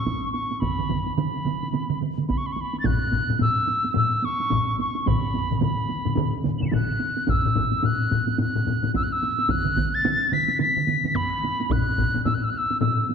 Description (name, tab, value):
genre	japanese traditional, taiko drum ensemble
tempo	108 BPM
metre	4/4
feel	swing 60% on 16ths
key	B suspended pentatonic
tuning	A4 = 440 Hz
part	wooden piccolo	melody	0.0-13.1 s	B5 to F#7	-25 LUFS	equal	none
part	taiko ensemble	percussion	0.1-13.1 s	none	-29 LUFS	right 2 dB	none
part	taiko ensemble	percussion	0.1-12.1 s	none	-30 LUFS	right 1 dB	none
part	taiko ensemble	percussion	0.6-11.1 s	none	-28 LUFS	right 6 dB	none
part	taiko ensemble	percussion	2.9-13.0 s	none	-26 LUFS	left 4 dB	none
room	wet concert hall reverb, RT60 1.9 s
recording	none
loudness	-21 LUFS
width	side -6 dB against mid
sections	0.0-13.1 A section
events	none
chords	none